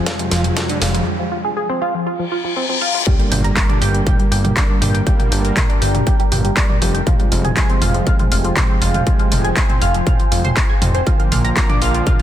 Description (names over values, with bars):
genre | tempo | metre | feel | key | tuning
melodic techno | 120 BPM | 4/4 | straight | G phrygian | A4 = 440 Hz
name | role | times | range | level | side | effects
deep dark ambient pad | sustained chords | 0.0-12.2 s | G3 to Ab5 | -27 LUFS | equal | chorus, built-in reverb, sidechain pumping
tight sequenced synth | arpeggios | 0.0-12.2 s | F3 to C6 | -22 LUFS | equal | chorus, phaser, sidechain pumping, digital delay
brassy analog pad | stabs | 0.0-12.2 s | C3 to Bb3 | -24 LUFS | right 3 dB | chorus, sidechain pumping, digital delay
riser, reverse cymbal and impact | sound effects | 0.0-5.1 s | none | -24 LUFS | left 2 dB | none
expressive synth lead | melody | 0.1-1.0 s | F3 to F4 | -28 LUFS | equal | chorus, sidechain pumping, tape echo
glassy wavetable pluck | second line | 0.1-1.0 s | F2 to F3 | -27 LUFS | left 2 dB | chorus, sidechain pumping, digital delay
electronic kick drum | drums | 0.1-12.2 s | none | -17 LUFS | equal | distortion, high-pass filter on kick, high-pass filter on room
techno drum kit | drums | 0.1-12.2 s | handclaps, hi-hat, snare drum, toms | -21 LUFS | equal | high-pass filter on snare, high-pass filter on hats, high-pass filter on toms, high-pass filter on room
fat analog bass | bass | 0.3-12.0 s | F1 to Bb1 | -19 LUFS | equal | sidechain pumping
room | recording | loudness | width
light reverb | dense, heavily limited modern master | -14 LUFS | side -11 dB against mid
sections
0.0-3.1 A section; 3.1-12.2 B section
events
build-up 0.0-3.1; drum fill 0.0-1.1; riser 0.0-1.1; filter sweep on synth arpeggio sound 0.0-3.1; reverse cymbal 2.3-3.1; drop 3.1-12.2; impact 3.1-5.1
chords
0.0 Fm; 3.1 Gm; 7.1 Fm; 11.1 Bb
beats
0.07 0.57 | 1.07 1.57 2.07 2.57 | 3.07 3.57 4.07 4.57 | 5.07 5.57 6.07 6.57 | 7.07 7.57 8.07 8.57 | 9.07 9.57 10.07 10.57 | 11.07 11.57 12.07